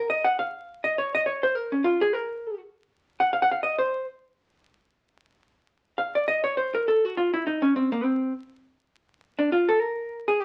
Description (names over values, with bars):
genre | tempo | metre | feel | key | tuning
jazz | 204 BPM | 4/4 | swing 60% on 8ths | unclear | A4 = 440 Hz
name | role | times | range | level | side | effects
archtop guitar, miked and amplified | solo | 0.0-10.4 s | Bb3 to Gb5 | -25 LUFS | equal | none
room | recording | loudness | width
wet studio reverb, RT60 0.6 s | very old 78 rpm record, vinyl crackle | -25 LUFS | mono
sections
0.0-5.7 A section; 5.7-10.4 A section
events
hollow-body jazz guitar solo 0.0-5.7, 5.7-10.4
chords
none